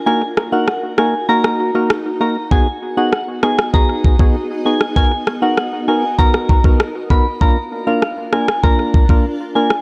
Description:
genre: dancehall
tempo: 98 BPM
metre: 4/4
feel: straight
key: Eb harmonic minor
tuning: A4 = 437 Hz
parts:
  - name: granular cloud pad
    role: sustained chords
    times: 0.0-9.8 s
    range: Cb4 to Eb5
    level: -28 LUFS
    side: equal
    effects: built-in reverb, sidechain pumping
  - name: soft synth bell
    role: melody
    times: 0.1-9.7 s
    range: F5 to B5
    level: -22 LUFS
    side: equal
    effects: chorus, phaser, tape echo
  - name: percussive organ stab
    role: accompaniment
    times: 0.1-9.7 s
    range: Bb3 to Bb4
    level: -22 LUFS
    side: equal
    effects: chorus, tape echo
  - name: afro-pop drum kit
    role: drums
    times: 0.4-9.8 s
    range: kick drum, rim click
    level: -17 LUFS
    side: equal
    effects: tape echo
room: light reverb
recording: echo-heavy mix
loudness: -16 LUFS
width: mono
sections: 0.0-9.8 A section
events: break 0.0-2.5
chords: 0.1 Ebm; 2.5 Abm7; 5.0 Bmaj7; 7.4 Bb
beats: | 0.06 0.68 1.29 1.90 | 2.51 3.13 3.74 4.35 | 4.96 5.58 6.19 6.80 | 7.41 8.02 8.64 9.25

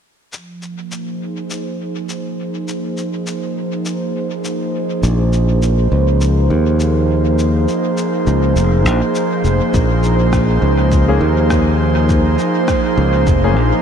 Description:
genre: ambient dub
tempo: 102 BPM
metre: 4/4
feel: swing 58% on 16ths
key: Bb minor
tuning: A4 = 440 Hz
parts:
  - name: airy breathy pad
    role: sustained chords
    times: 0.3-13.8 s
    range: F3 to C5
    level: -17 LUFS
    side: right 1 dB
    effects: chorus
  - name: electronic cabasa and rim click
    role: drums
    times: 0.3-13.4 s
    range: none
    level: -30 LUFS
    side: left 2 dB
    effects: small room ambience, dub echo
  - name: modern bright fingered electric bass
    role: bass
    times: 5.0-13.7 s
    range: F1 to Eb2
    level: -14 LUFS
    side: equal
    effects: none
  - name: electronic kick drum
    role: drums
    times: 9.7-13.4 s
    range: none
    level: -18 LUFS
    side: left 1 dB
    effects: small room ambience
  - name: warm upright piano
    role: stabs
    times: 11.1-13.5 s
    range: Bb3 to Ab4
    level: -23 LUFS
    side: left 5 dB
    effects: none
room: moderate lush hall reverb, RT60 3.0 s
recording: dreamy mix soaked in reverb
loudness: -13 LUFS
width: side -8 dB against mid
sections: 0.3-9.7 A section; 9.7-13.8 B section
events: filter sweep on analog synth pad 0.3-9.7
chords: 0.3 Bb7(no3); 9.7 Bbm7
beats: | 0.33 0.92 1.50 2.09 | 2.68 3.27 3.86 4.45 | 5.03 5.62 6.21 6.80 | 7.39 7.97 8.56 9.15 | 9.74 10.33 10.92 11.51 | 12.09 12.68 13.27

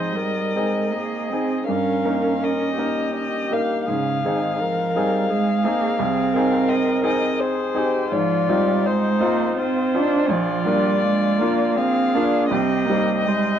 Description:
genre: classical, slow romantic movement for piano quartet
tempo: 83 BPM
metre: 3/4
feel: uneven beats, rubato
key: Ab major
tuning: A4 = 438 Hz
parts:
  - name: muted violin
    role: melody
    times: 0.0-13.6 s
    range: C5 to F5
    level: -24 LUFS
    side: left 6 dB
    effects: none
  - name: muted cello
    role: second line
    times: 0.0-13.6 s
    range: Db3 to D4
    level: -23 LUFS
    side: right 4 dB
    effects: none
  - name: bright baby grand piano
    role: accompaniment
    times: 0.0-13.6 s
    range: Bb1 to Bb4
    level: -24 LUFS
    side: equal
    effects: none
  - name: muted viola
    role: accompaniment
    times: 0.0-13.6 s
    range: Eb4 to C5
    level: -27 LUFS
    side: right 1 dB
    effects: none
room: light reverb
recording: worn, warbling old tape, cassette tape, warbly pitch drift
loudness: -18 LUFS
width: side -9 dB against mid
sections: 0.0-13.6 A section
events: none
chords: 0.0 Ab; 1.7 Eb/G; 3.9 Ab; 6.0 Ab/C; 8.1 Fm7/Ab; 10.3 Bb; 12.5 Cm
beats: 0.16 0.94 | 1.68 2.41 3.14 | 3.87 4.60 5.30 | 6.00 6.69 7.40 | 8.13 8.85 9.58 | 10.30 11.03 11.78 | 12.52 13.27

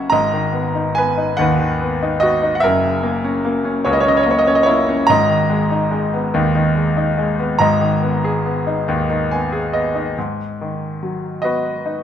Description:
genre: classical, lyrical solo piano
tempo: 48 BPM (dotted quarters)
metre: 6/8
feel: rubato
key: G# minor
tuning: A4 = 440 Hz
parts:
  - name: clear grand piano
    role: solo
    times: 0.0-12.0 s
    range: F#1 to A#5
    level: -15 LUFS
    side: equal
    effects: none
room: moderate recital hall reverb, RT60 1.8 s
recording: minimal, uncompressed stereo recording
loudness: -15 LUFS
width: side -9 dB against mid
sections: 0.1-10.2 A section; 10.2-12.0 B section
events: grand piano fill 8.9-10.2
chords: 0.1 G#m7; 2.6 F#7; 5.1 G#madd9; 10.2 G#m7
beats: | 0.11 1.38 | 2.63 3.86 | 5.09 6.34 | 7.60 8.88 | 10.17 11.43

